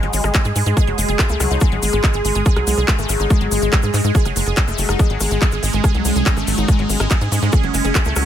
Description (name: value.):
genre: psychedelic trance.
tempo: 142 BPM.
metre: 4/4.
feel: straight.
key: unclear.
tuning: A4 = 438 Hz.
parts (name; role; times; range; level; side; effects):
evolving wavetable pad; sustained chords; 0.0-8.3 s; G#3 to G#4; -23 LUFS; equal; phaser, built-in reverb, sidechain pumping.
wide unison pluck; riff; 0.0-8.2 s; F#3 to G#4; -24 LUFS; moving between left 5 dB and right 6 dB; auto-pan, sidechain pumping, dub echo.
tight sequencer bass; bass; 0.0-8.2 s; F#1 to G#2; -20 LUFS; equal; none.
techno drum kit; drums; 0.0-8.2 s; handclaps, hi-hat, rim click; -23 LUFS; equal; none.
cabasa; percussion; 0.1-8.2 s; none; -29 LUFS; left 6 dB; none.
electronic kick drum; drums; 0.3-8.0 s; none; -15 LUFS; equal; overdrive.
room: little or no reverb.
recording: none.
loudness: -14 LUFS.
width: side -10 dB against mid.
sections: 0.0-8.3 A section.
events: none.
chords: 0.0 G#5.